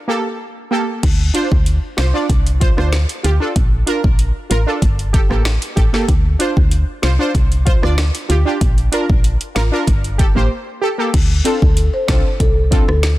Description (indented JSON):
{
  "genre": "dancehall",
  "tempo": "95 BPM",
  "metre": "4/4",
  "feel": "straight",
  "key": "D minor",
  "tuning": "A4 = 442 Hz",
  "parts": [
    { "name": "synth brass stab", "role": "accompaniment", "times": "0.1-12.9 s", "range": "Bb3 to D5", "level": "-20 LUFS", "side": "right 1 dB", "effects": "chorus, sidechain pumping" },
    { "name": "woody FM bass", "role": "bass", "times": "1.0-13.2 s", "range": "G1 to D2", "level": "-16 LUFS", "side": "equal", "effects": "none" },
    { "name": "afro-pop drum kit", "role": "drums", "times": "1.0-13.2 s", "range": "crash cymbal, hi-hat, kick drum, rim click, snare drum", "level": "-16 LUFS", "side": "equal", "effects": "none" },
    { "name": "marimba with medium mallets", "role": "melody", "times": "11.5-13.0 s", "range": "A4 to C5", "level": "-21 LUFS", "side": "left 3 dB", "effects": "tape echo" }
  ],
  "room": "little or no reverb",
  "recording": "dense, heavily limited modern master",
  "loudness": "-13 LUFS",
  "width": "side -16 dB against mid",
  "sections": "0.0-1.0 A section; 1.0-11.1 B section; 11.1-13.2 C section",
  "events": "break 0.0-1.0, 10.5-11.1",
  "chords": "0.0 Gmadd9; 1.0 Dm7; 3.6 Bb; 4.8 Gmadd9; 6.1 Dm7; 8.6 Bb; 9.9 Gmadd9; 11.1 Dm7"
}